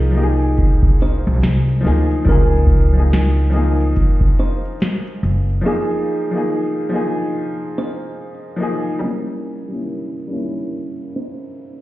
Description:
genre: lo-fi hip hop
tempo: 71 BPM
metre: 4/4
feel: swing 63% on 16ths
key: F minor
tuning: A4 = 440 Hz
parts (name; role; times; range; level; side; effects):
- kalimba; melody; 0.0-11.5 s; Ab4 to C5; -26 LUFS; right 3 dB; low-pass filter
- clear upright piano; accompaniment; 0.0-11.8 s; F3 to Bb4; -22 LUFS; left 2 dB; low-pass filter
- upright bass; bass; 0.0-5.6 s; Gb1 to D2; -16 LUFS; equal; none
- booming analog drum machine; drums; 0.0-5.6 s; hi-hat, kick drum, snare drum; -16 LUFS; equal; none
room: light reverb, small room reverb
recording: heard muffled through a wall, stone room reverb, EQ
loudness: -15 LUFS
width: side -16 dB against mid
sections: 0.0-9.0 A section; 9.0-11.8 B section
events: break 5.6-9.0; filter sweep 9.0-11.8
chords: 0.0 Fm9/C; 2.3 Db6; 5.6 Fm7; 9.0 Gdim7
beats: 0.57 1.42 | 2.26 3.10 3.95 4.79 | 5.64 6.49 7.33 8.18 | 9.02 9.87 10.71 11.56

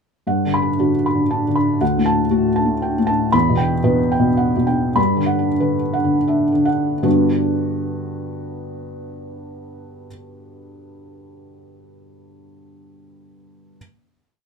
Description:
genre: neoclassical minimalist piano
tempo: 79-119 BPM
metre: 3/4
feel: rubato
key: G major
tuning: A4 = 440 Hz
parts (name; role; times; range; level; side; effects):
- felt-muted upright piano; solo; 0.3-13.8 s; D2 to B5; -16 LUFS; equal; none
room: moderate small room reverb, RT60 0.5 s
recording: minimal, uncompressed stereo recording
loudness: -16 LUFS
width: side -5 dB against mid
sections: 0.3-7.0 A section; 7.0-11.5 final chord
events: slowing down 2.6-7.0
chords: 0.3 Gmaj7; 1.8 D; 3.3 Em; 5.0 Gmaj7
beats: | 0.27 0.80 1.31 | 1.81 2.32 2.83 | 3.34 3.85 4.39 | 4.97 5.60 6.29 | 7.04 7.79 8.54 | 9.29 10.04 10.78

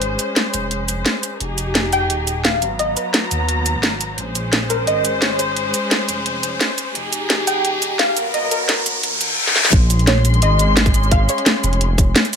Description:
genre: liquid drum and bass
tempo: 173 BPM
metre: 4/4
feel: straight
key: Bb dorian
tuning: A4 = 435 Hz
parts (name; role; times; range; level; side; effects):
- soft round pluck; melody; 0.0-12.3 s; Bb4 to G5; -22 LUFS; equal; analog chorus, dub echo
- muted chamber string section; sustained chords; 0.0-12.4 s; Gb3 to C6; -23 LUFS; left 2 dB; sidechain pumping
- dark detuned saw bass; bass; 0.0-12.1 s; Eb1 to Eb2; -20 LUFS; equal; tube saturation
- garage drum kit; drums; 0.0-12.4 s; hi-hat, shaker, snare drum; -18 LUFS; equal; high-pass filter on hats, high-pass filter on snare, high-pass filter on perc, high-pass filter on room
- riser and reverse cymbal; sound effects; 3.1-9.7 s; none; -24 LUFS; left 1 dB; none
- electronic kick drum; drums; 9.7-12.1 s; none; -15 LUFS; equal; none
room: light reverb, digital ambience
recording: high-pass filter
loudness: -15 LUFS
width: side -7 dB against mid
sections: 0.0-9.7 A section; 9.7-12.4 B section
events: build-up 0.0-9.7; filter sweep 0.0-9.7; riser 3.1-9.7; reverse cymbal 9.0-9.7; drum fill 9.5; drop 9.7-12.4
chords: 0.0 Bbm9 (rootless); 1.4 Fm9; 2.6 Abm9; 4.2 Bbm9; 7.0 Fm9; 8.2 Abm9; 9.7 Bbm9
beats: | 0.02 0.36 0.71 1.06 | 1.41 1.75 2.10 2.44 | 2.79 3.14 3.49 3.83 | 4.18 4.53 4.87 5.22 | 5.57 5.91 6.26 6.61 | 6.95 7.30 7.65 8.00 | 8.34 8.69 9.04 9.38 | 9.73 10.07 10.42 10.77 | 11.12 11.46 11.81 12.16

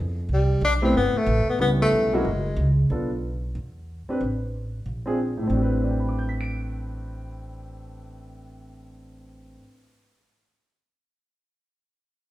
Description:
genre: jazz, small-group swing and bop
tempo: 184 BPM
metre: 4/4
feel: swing 62% on 8ths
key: A minor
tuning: A4 = 439 Hz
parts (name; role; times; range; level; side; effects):
- upright bass; bass; 0.0-9.6 s; F#1 to F2; -26 LUFS; right 1 dB; none
- breathy tenor saxophone; melody; 0.3-2.8 s; G3 to D4; -23 LUFS; left 2 dB; none
- warm concert grand piano; accompaniment; 0.8-9.9 s; A2 to D7; -27 LUFS; equal; none
room: wet large studio reverb, RT60 1.3 s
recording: band playing live in one room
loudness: -21 LUFS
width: side -15 dB against mid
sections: 0.0-2.9 A section; 2.9-5.5 B section; 5.5-8.1 C section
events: none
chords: 0.3 Am9; 1.6 C#m7b5; 2.2 F#5; 2.9 Bm7b5; 3.6 E5; 4.2 N.C.; 4.9 Bb7; 5.5 Am11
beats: | 0.30 0.62 0.95 1.27 | 1.60 1.93 2.25 2.58 | 2.90 3.23 3.55 3.88 | 4.20 4.53 4.85 5.18 | 5.50 5.83 6.16 6.48 | 6.81 7.13 7.46 7.79

